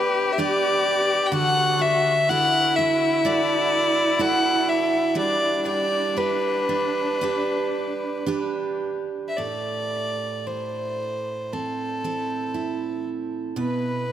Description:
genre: celtic folk, Celtic slow air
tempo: 54-64 BPM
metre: 4/4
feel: rubato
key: A dorian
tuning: A4 = 440 Hz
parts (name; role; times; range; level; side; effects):
- dark fiddle; melody; 0.0-14.1 s; A4 to G5; -23 LUFS; left 1 dB; none
- rich cello; second line; 0.0-8.8 s; D4 to G4; -27 LUFS; left 4 dB; none
- picked steel-string acoustic guitar; accompaniment; 0.0-14.1 s; A2 to B4; -27 LUFS; right 4 dB; none
room: wet cathedral reverb, RT60 6.0 s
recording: none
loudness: -21 LUFS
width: side -10 dB against mid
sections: 0.0-9.4 A section; 9.4-14.1 B section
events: none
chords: 0.0 G/B; 1.3 Dadd9; 5.2 G; 9.4 Am; 13.6 N.C.

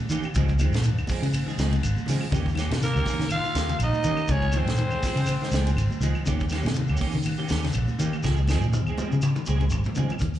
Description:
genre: afrobeat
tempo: 122 BPM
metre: 4/4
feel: swing 56% on 16ths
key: unclear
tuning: A4 = 440 Hz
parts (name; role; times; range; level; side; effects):
- vintage muted fingered electric bass; bass; 0.0-10.4 s; Ab1 to Eb3; -24 LUFS; equal; none
- congas; percussion; 0.0-10.1 s; none; -37 LUFS; right 4 dB; none
- semi-hollow electric guitar; arpeggios; 0.1-10.4 s; Db3 to Eb3; -32 LUFS; left 7 dB; none
- clean electric guitar; stabs; 0.1-10.1 s; Eb3 to Ab4; -33 LUFS; right 7 dB; ensemble chorus, slapback echo
- tight funk drum kit; drums; 0.1-10.4 s; hi-hat, kick drum, ride cymbal, snare drum, toms; -31 LUFS; equal; none
- shekere; percussion; 0.1-10.4 s; none; -36 LUFS; right 1 dB; none
- claves; percussion; 0.3-10.2 s; none; -42 LUFS; equal; none
- breathy alto saxophone; melody; 2.8-6.0 s; Bb4 to F5; -30 LUFS; left 1 dB; none
- brilliant trombone; second line; 2.8-6.0 s; Bb3 to F4; -33 LUFS; right 3 dB; slapback echo
room: light reverb, small room reverb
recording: live gig heard through the venue's PA, club reverb, nothing above 10.6 kHz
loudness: -22 LUFS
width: side -12 dB against mid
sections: 0.0-10.2 A section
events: drum fill 8.2-10.2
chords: 0.4 Dbmaj7; 2.3 Eb7; 4.3 Dbmaj7; 6.3 Eb7; 8.2 Dbmaj7

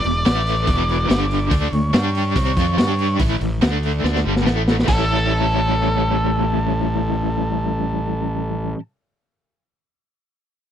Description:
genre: blues rock power trio and southern rock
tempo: 142 BPM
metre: 4/4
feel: straight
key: A mixolydian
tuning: A4 = 440 Hz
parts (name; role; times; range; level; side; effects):
- octave-fuzz lead guitar; melody; 0.0-8.7 s; A4 to D5; -23 LUFS; equal; wah, distortion, slapback echo
- overdriven electric guitar; riff; 0.0-8.8 s; E2 to G4; -22 LUFS; left 1 dB; tremolo
- fuzz fingered electric bass; bass; 0.0-8.7 s; E1 to G2; -22 LUFS; equal; overdrive
- raw garage drum kit; drums; 0.0-5.0 s; crash cymbal, hi-hat, kick drum, snare drum; -20 LUFS; equal; none
room: little or no reverb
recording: dry, close 1970s-style studio recording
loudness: -17 LUFS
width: side -9 dB against mid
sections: 0.0-4.9 A section; 4.9-8.3 B section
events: drum fill 4.0-4.9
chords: 0.2 A5; 0.7 E5; 1.1 G5; 1.5 D5; 1.9 G5; 2.4 Csus24; 2.8 G5; 3.2 A5; 3.6 D5; 4.0 Gsus2; 4.5 A5; 4.9 A7

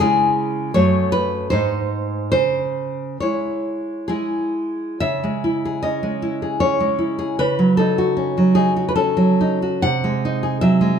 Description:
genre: romantic piece for solo classical guitar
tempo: 60-84 BPM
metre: 3/4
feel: rubato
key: C# minor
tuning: A4 = 440 Hz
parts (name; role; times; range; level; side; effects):
- nylon-string guitar; solo; 0.0-11.0 s; F#2 to F#5; -17 LUFS; equal; none
room: moderate recital hall reverb, RT60 1.4 s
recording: minimal, uncompressed stereo recording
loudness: -17 LUFS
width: side -7 dB against mid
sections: 0.0-5.0 A section; 5.0-11.0 B section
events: none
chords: 0.0 C#m; 0.7 F#m; 1.5 G#; 2.3 C#m; 7.4 D#m7b5/C#; 9.8 G#7/B#

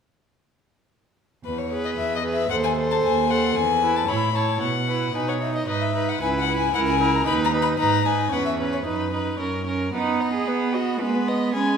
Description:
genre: quick classical-period movement for string quartet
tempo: 113 BPM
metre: 2/4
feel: straight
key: E major, B major from 5.7 s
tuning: A4 = 441 Hz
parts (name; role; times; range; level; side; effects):
- warm violin; melody; 1.4-11.8 s; B4 to B5; -25 LUFS; left 8 dB; none
- rich cello; bass; 1.4-11.8 s; C#2 to G#4; -26 LUFS; right 4 dB; none
- rich violin; second line; 1.7-11.8 s; A#4 to G#5; -28 LUFS; left 2 dB; none
- warm viola; accompaniment; 1.7-11.8 s; G#3 to A4; -26 LUFS; right 3 dB; none
room: wet scoring stage reverb, RT60 1.5 s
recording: minimal, uncompressed stereo recording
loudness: -20 LUFS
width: side -6 dB against mid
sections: 1.4-9.9 A section; 9.9-11.8 B section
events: none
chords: 1.4 E; 2.5 D#dim7; 3.6 E; 4.1 A; 4.6 Bsus4; 5.1 B; 5.7 G#m; 6.2 C#m7; 7.3 B/D#; 7.8 G#m; 8.3 C#m7/E; 8.9 B/F#; 9.4 F#; 9.9 B; 11.0 G#m

